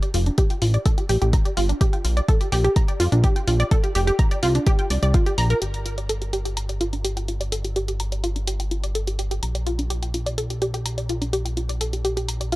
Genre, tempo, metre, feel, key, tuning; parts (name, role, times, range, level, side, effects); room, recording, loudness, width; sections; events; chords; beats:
melodic techno; 126 BPM; 4/4; straight; A4 = 442 Hz
wide unison pluck; arpeggios; 0.0-12.6 s; D4 to Bb5; -25 LUFS; equal; sidechain pumping, analog delay
electronic hi-hat; drums; 0.0-12.6 s; -31 LUFS; left 1 dB
fat analog bass; bass; 0.1-12.6 s; F1 to F2; -23 LUFS; equal; tube saturation, sidechain pumping
electronic kick drum; drums; 0.4-5.2 s; -19 LUFS; equal
digital ambience; dry, gritty hardware recording; -20 LUFS; side -18 dB against mid
0.0-5.6 A section; 5.6-12.6 B section
filter sweep on synth pluck 0.0-5.6, 5.6-12.6
0.0 G5; 1.8 Bb5; 5.6 N.C.
0.38 0.86 1.33 | 1.81 2.29 2.76 3.24 | 3.71 4.19 4.67 5.14 | 5.62 6.09 6.57 7.05 | 7.52 8.00 8.47 8.95 | 9.43 9.90 10.38 10.86 | 11.33 11.81 12.29